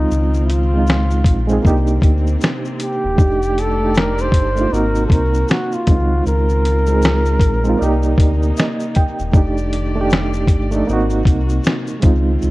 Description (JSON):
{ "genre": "lo-fi hip hop", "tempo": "78 BPM", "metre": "4/4", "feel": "swing 61% on 16ths", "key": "C dorian", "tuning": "A4 = 439 Hz", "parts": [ { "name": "breathy flugelhorn", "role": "melody", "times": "0.0-8.9 s", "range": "Eb4 to C5", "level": "-22 LUFS", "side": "equal", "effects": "analog delay" }, { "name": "reed electric piano", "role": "accompaniment", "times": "0.0-12.5 s", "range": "Ab3 to G5", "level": "-20 LUFS", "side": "right 2 dB", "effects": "fast tremolo, cassette tape" }, { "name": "warm studio string section", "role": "sustained chords", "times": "0.0-12.5 s", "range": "C3 to D5", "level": "-28 LUFS", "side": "left 1 dB", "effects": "none" }, { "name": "sub bass with octave", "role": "bass", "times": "0.0-12.5 s", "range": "Eb1 to D2", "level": "-18 LUFS", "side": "equal", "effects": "none" }, { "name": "dusty soul sampler-style drum kit", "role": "drums", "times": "0.1-12.5 s", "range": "finger snaps, hi-hat, kick drum, shaker, snare drum", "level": "-15 LUFS", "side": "equal", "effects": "none" } ], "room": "little or no reverb", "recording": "echo-heavy mix, cassette tape", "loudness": "-14 LUFS", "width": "side -19 dB against mid", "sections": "0.0-12.5 A section", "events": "reed electric piano fill 8.2-9.3", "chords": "0.0 Dbmaj9; 1.6 Cm9; 3.2 F13; 4.7 Ab9; 5.9 Dbmaj9; 7.8 Cm9; 9.3 F13; 10.9 Ab9", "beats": "| 0.11 0.88 1.65 2.42 | 3.19 3.96 4.72 5.49 | 6.26 7.03 7.80 8.57 | 9.34 10.11 10.88 11.65 | 12.42" }